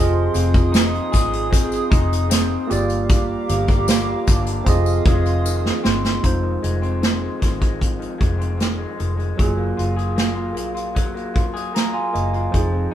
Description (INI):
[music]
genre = indie pop, bedroom pop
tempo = 76 BPM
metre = 4/4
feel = straight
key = F dorian, F phrygian from 6.2 s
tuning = A4 = 440 Hz
[part]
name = barky tine electric piano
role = accompaniment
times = 0.0-12.9 s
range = F3 to Bb5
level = -26 LUFS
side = right 4 dB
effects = none
[part]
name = electric guitar through a small old amp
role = accompaniment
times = 0.0-12.9 s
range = F2 to Ab4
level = -26 LUFS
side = left 4 dB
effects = warbly pitch drift
[part]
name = hollow soft pad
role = sustained chords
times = 0.0-6.2 s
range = G4 to Eb6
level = -27 LUFS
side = right 4 dB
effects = chorus
[part]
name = vintage muted fingered electric bass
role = bass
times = 0.0-12.9 s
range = F1 to Bb1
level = -22 LUFS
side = left 1 dB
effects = none
[part]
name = tambourine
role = percussion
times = 0.3-6.2 s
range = none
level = -35 LUFS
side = left 6 dB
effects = none
[part]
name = unplugged drum kit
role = drums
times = 0.4-12.7 s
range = hi-hat, kick drum, snare drum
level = -18 LUFS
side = equal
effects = none
[sound]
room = moderate studio reverb, RT60 0.8 s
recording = band playing live in one room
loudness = -17 LUFS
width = side -11 dB against mid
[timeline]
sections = 0.0-6.2 A section; 6.2-12.9 B section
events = drum fill 5.5-6.2; tine electric piano fill 11.4-12.5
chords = 0.0 Fm7; 2.7 Gm7; 4.7 Fm7; 9.4 Gbmaj9